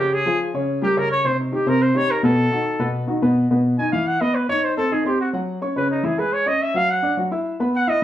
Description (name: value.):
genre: jazz.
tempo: 213 BPM.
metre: 4/4.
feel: straight.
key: E major from 3.5 s.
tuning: A4 = 440 Hz.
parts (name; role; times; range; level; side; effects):
warm trumpet; melody; 0.0-8.0 s; D#4 to G#5; -21 LUFS; equal; none.
warm baby grand piano; accompaniment; 0.0-8.0 s; B2 to E6; -20 LUFS; equal; none.
room: wet studio reverb, RT60 0.5 s.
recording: heard from further back in the room.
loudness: -18 LUFS.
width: side -12 dB against mid.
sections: 0.0-3.5 A section; 3.5-8.0 A section.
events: trumpet solo 0.0-8.0.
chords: 0.1 Db; 0.7 Gdim/Db; 1.2 Baug; 2.4 B7; 3.5 E5; 4.6 D#m6; 5.8 C#madd11; 6.9 Dadd9/F#; 7.4 E5.